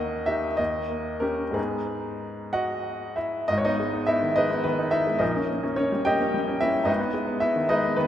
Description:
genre	classical, romantic character piece for solo piano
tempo	58-75 BPM (dotted quarters)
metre	6/8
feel	rubato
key	G# minor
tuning	A4 = 440 Hz
part	clear upright piano	solo	0.0-8.1 s	G#1 to G5	-23 LUFS	equal	none
room	wet concert hall reverb, RT60 2.5 s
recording	none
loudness	-23 LUFS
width	side -10 dB against mid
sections	0.0-3.5 A section; 3.5-8.1 A section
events	none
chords	0.0 D#; 0.6 D#7; 1.6 G#m; 5.2 D#7/A#; 6.9 G#m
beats	0.59 | 1.56 2.54 | 3.49 4.36 | 5.21 6.07 | 6.89 7.71

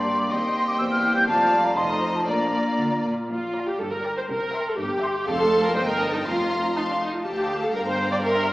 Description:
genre	quick classical-period movement for symphony orchestra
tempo	122 BPM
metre	2/4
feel	straight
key	Bb major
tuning	A4 = 440 Hz
part	rich studio violin section	melody	0.0-8.5 s	C5 to C6	-32 LUFS	left 1 dB	none
part	clear studio violin section	second line	0.0-8.5 s	D5 to Bb5	-31 LUFS	left 1 dB	none
part	concert flute	second line	0.0-3.0 s	A5 to G6	-22 LUFS	equal	none
part	rich studio viola section	accompaniment	0.0-8.5 s	G3 to D5	-25 LUFS	equal	none
part	mellow French horn section	sustained chords	0.0-3.0 s	A3 to Eb4	-28 LUFS	left 1 dB	none
part	bright studio double bass section	bass	0.0-8.5 s	E1 to Eb2	-35 LUFS	equal	none
part	rich studio cello section	bass	0.0-8.5 s	D2 to D3	-33 LUFS	equal	none
part	timpani	percussion	5.3-5.7 s	F2	-40 LUFS	equal	none
room	wet recital hall reverb, RT60 1.5 s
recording	heard from further back in the room, small speaker sound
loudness	-21 LUFS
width	side -18 dB against mid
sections	0.0-3.3 A section; 3.3-8.5 A section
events	none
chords	0.3 Cm7/Eb; 0.8 C7/E; 1.3 F; 1.8 F7; 2.3 Bb; 3.8 Gm; 5.3 F; 5.8 Eb/G; 6.3 Fsus4; 6.8 F; 7.3 Dm; 7.7 Gm7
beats	| 0.31 0.79 | 1.28 1.77 | 2.28 2.79 | 3.30 3.80 | 4.29 4.78 | 5.27 5.76 | 6.25 6.75 | 7.25 7.74 | 8.23

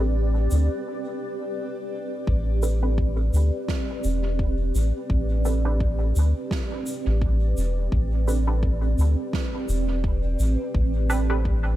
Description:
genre	ambient dub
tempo	85 BPM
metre	4/4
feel	swing 56% on 16ths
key	A minor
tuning	A4 = 443 Hz
part	granular cloud pad	sustained chords	0.0-11.8 s	C4 to D5	-30 LUFS	right 1 dB	built-in reverb
part	filtered dub chord stab	stabs	0.0-11.5 s	C4 to B4	-33 LUFS	right 3 dB	phaser, analog chorus, dub echo
part	soft dub sub bass	bass	0.0-11.8 s	E1 to D2	-22 LUFS	equal	none
part	shaker and snare drum	drums	0.5-11.3 s	none	-36 LUFS	right 4 dB	dub echo
part	electronic kick drum	drums	2.3-11.6 s	none	-27 LUFS	equal	none
room	small room ambience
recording	none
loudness	-22 LUFS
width	side -14 dB against mid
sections	0.0-2.3 A section; 2.3-11.8 A section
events	break 0.9-2.3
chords	0.0 Am11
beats	0.16 0.86 1.57 | 2.28 2.98 3.69 4.39 | 5.10 5.81 6.51 7.22 | 7.92 8.63 9.34 10.04 | 10.75 11.45

